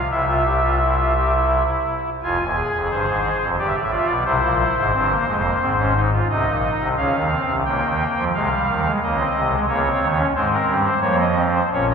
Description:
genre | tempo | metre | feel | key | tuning
classical, baroque-style 3-part fugue for pipe organ | 88 BPM | 3/4 | straight | F minor | A4 = 440 Hz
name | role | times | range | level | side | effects
pipe organ, soft reed | solo | 0.0-11.9 s | Eb1 to Ab5 | -17 LUFS | equal | none
room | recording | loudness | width
wet church reverb, RT60 3.0 s | recorded in a church or concert hall | -17 LUFS | side -6 dB against mid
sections
0.0-2.2 A section; 2.2-6.3 B section; 6.3-11.9 A section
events
none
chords
0.1 C; 2.2 Fm; 3.6 G7; 4.3 C; 5.6 Fm/Ab; 6.3 Cm; 7.7 Bbm/Db; 8.3 Ab/C; 9.7 Dbsus2; 10.3 Fm

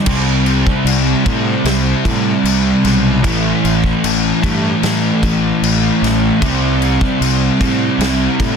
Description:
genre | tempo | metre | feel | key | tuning
rock, shoegaze and dream pop | 76 BPM | 4/4 | straight | C major | A4 = 441 Hz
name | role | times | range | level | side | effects
fuzz guitar | riff | 0.0-8.6 s | A2 to C4 | -14 LUFS | equal | distortion, analog chorus
fuzz fingered electric bass | bass | 0.1-8.6 s | A1 to A2 | -19 LUFS | equal | overdrive
loose indie drum kit | drums | 0.1-8.6 s | crash cymbal, kick drum, snare drum | -19 LUFS | left 1 dB | soft clipping on snare
room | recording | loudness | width
light reverb, studio reverb | dense, heavily limited modern master | -12 LUFS | side -6 dB against mid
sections
0.1-8.6 A section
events
none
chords
0.1 C5; 3.2 A5; 6.4 C5

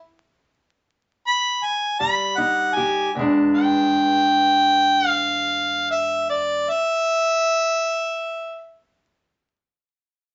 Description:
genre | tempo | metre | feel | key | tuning
acoustic country blues, solo or duo | 51-59 BPM (dotted quarters) | 12/8 | straight | E mixolydian | A4 = 439 Hz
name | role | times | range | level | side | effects
clear harmonica | melody | 1.3-8.6 s | D5 to B5 | -21 LUFS | equal | none
fingerpicked steel-string acoustic guitar | accompaniment | 2.0-6.7 s | E2 to G4 | -25 LUFS | equal | none
room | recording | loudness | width
wet studio reverb, RT60 0.6 s | vinyl crackle, nothing above 7.8 kHz | -20 LUFS | mono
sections
0.0-3.1 A section; 3.1-7.9 B section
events
slowing down 0.0-3.1; stop 0.0-2.0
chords
0.0 N.C.; 2.0 Fsus2; 3.1 E7

